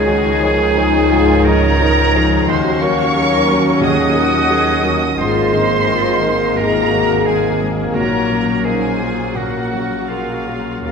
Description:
cinematic, emotional film score for orchestra; 77-90 BPM; 4/4; rubato; A4 = 443 Hz
muted chamber violin section; melody; 0.0-10.9 s; F5 to Eb6; -22 LUFS; right 2 dB
clear oboe; second line; 0.0-10.9 s; F4 to Eb5; -23 LUFS; right 2 dB
concert flute; second line; 0.0-10.9 s; Ab4 to Gb5; -25 LUFS; left 1 dB
muted studio violin section; second line; 0.0-10.9 s; F4 to Eb5; -24 LUFS; left 2 dB
muted symphonic viola section; accompaniment; 0.0-10.9 s; Eb3 to Eb4; -24 LUFS; equal
warm grand piano; accompaniment; 0.0-10.9 s; Db2 to Db5; -22 LUFS; equal
mellow French horn section; sustained chords; 0.0-10.9 s; Eb3 to Eb4; -22 LUFS; left 4 dB
concert harp; arpeggios; 0.0-10.9 s; Ab2 to Bb4; -21 LUFS; left 4 dB
muted symphonic cello section; bass; 0.0-10.9 s; Eb4 to Bb4; -24 LUFS; right 3 dB
muted symphonic double bass section; bass; 0.0-10.9 s; Ab1 to Eb2; -22 LUFS; right 3 dB
wet scoring stage reverb, RT60 1.6 s; minimal, uncompressed stereo recording; -13 LUFS; side -5 dB against mid
0.0-10.9 A section
0.0 Dbadd9; 2.5 Ebm7; 5.2 Abadd9; 8.0 Gb/Bb

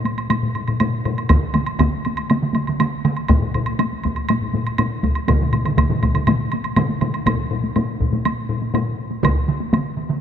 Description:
japanese traditional, taiko drum ensemble; 121 BPM; 4/4; straight
taiko ensemble; percussion; 0.0-9.8 s; -23 LUFS; left 1 dB
woodblock; percussion; 0.1-9.8 s; -26 LUFS; right 4 dB
solo taiko drums; percussion; 0.3-8.9 s; -24 LUFS; left 4 dB
taiko ensemble; percussion; 1.3-10.2 s; -24 LUFS; right 4 dB
taiko ensemble; percussion; 1.3-9.3 s; -21 LUFS; equal
moderate cathedral reverb, RT60 5.0 s; in a vast, echoing space; -17 LUFS; side -8 dB against mid
0.0-7.3 A section; 7.3-10.2 B section

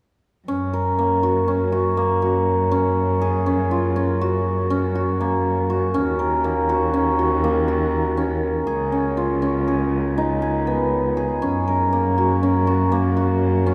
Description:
contemporary instrumental, contemporary; 242 BPM (eighths); 11/8; straight; F# major; A4 = 440 Hz
hammered dulcimer; arpeggios; 0.5-13.7 s; A#3 to A#4; -22 LUFS; equal
rich cello; bass; 0.5-13.7 s; C#2 to F#2; -25 LUFS; equal
moderate recital hall reverb, RT60 1.6 s; recorded in a church or concert hall; -20 LUFS; mono
0.5-13.7 A section
0.5 F#add9; 5.9 D#m7; 8.7 C#9; 11.4 F#maj9

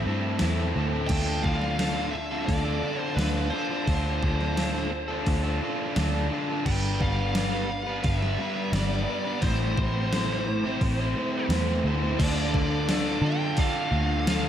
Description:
rock, shoegaze and dream pop; 86 BPM; 4/4; straight; A4 = 444 Hz
crunchy overdriven guitar; riff; 0.0-14.5 s; A2 to C5; -28 LUFS; equal; lush chorus
vintage muted picked electric bass; bass; 0.0-14.5 s; G1 to D3; -28 LUFS; equal
gated 80s digital drum machine; drums; 0.4-14.4 s; crash cymbal, hi-hat, kick drum, snare drum; -29 LUFS; equal; gated reverb, gated reverb snare, overdrive
bluesy overdriven lead guitar; melody; 1.1-14.5 s; B4 to G5; -33 LUFS; equal; distortion, analog delay
wet lush hall reverb, RT60 3.0 s; dreamy mix soaked in reverb; -24 LUFS; side -10 dB against mid
0.0-12.2 A section; 12.2-14.5 B section
0.0 Am7; 1.1 Dm7; 6.7 G; 9.4 Am; 12.2 Dm

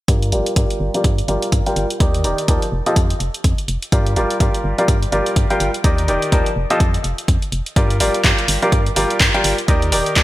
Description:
piano house; 125 BPM; 4/4; swing 59% on 16ths; G minor; A4 = 440 Hz
bright grand piano; riff; 0.1-10.2 s; Eb3 to G5; -19 LUFS; equal; sidechain pumping, low-pass filter, digital delay
organ-like FM bass; bass; 0.1-10.2 s; Eb1 to G2; -21 LUFS; equal; sidechain pumping
electronic kick drum; drums; 0.1-10.2 s; -17 LUFS; equal; overdrive
punchy analog drum machine; drums; 0.1-10.2 s; handclaps, hi-hat; -21 LUFS; equal; overdrive, gated reverb
light reverb, digital ambience; bright 1980s-style digital production; -15 LUFS; side -16 dB against mid
0.1-10.2 A section
filter sweep on FM bass 0.1-10.2; filter sweep on grand piano 0.1-10.2
0.1 Gm7; 2.0 Ebmaj7; 2.7 N.C.; 3.9 Gm7; 5.8 Ebmaj7; 6.6 N.C.; 7.8 Gm7; 9.7 Ebmaj7

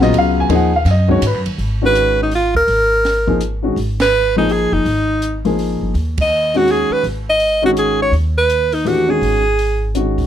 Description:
modal jazz; 165 BPM; 3/4; swing 64% on 8ths; G# dorian; A4 = 440 Hz
dark upright piano; accompaniment; 0.0-10.3 s; C#3 to G#5; -17 LUFS; left 3 dB
upright bass; bass; 0.0-10.3 s; F#1 to G#2; -19 LUFS; equal
compact cocktail drum kit; drums; 0.0-10.2 s; hi-hat, kick drum, ride cymbal, snare drum; -27 LUFS; right 2 dB
clear alto saxophone; melody; 1.9-10.0 s; D#4 to D#5; -15 LUFS; right 1 dB
light reverb; close, detailed microphones; -13 LUFS; side -10 dB against mid
0.0-1.6 A section; 1.6-10.3 B section
band accent 4.0, 6.1
0.0 G#m11; 1.6 G#9sus4

